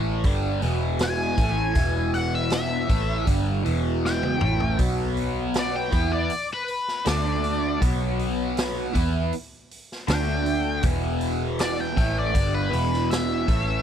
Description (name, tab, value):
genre	blues rock power trio and southern rock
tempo	79 BPM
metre	4/4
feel	straight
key	unclear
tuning	A4 = 440 Hz
part	cranked stack guitar	riff	0.0-13.8 s	E2 to E4	-26 LUFS	right 1 dB	overdrive, phaser
part	vintage muted picked electric bass	bass	0.0-13.8 s	E1 to E2	-27 LUFS	equal	none
part	raw garage drum kit	drums	0.2-13.7 s	hi-hat, kick drum, snare drum, toms	-28 LUFS	equal	none
part	octave-fuzz lead guitar	melody	1.0-13.8 s	B4 to G#5	-28 LUFS	left 3 dB	wah, distortion, slapback echo
room	small room ambience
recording	dry, close 1970s-style studio recording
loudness	-22 LUFS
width	side -9 dB against mid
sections	0.0-13.8 A section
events	drum fill 4.0-4.8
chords	0.0 E7; 4.8 B5; 7.1 D5; 7.8 B5; 10.1 D5; 10.8 E5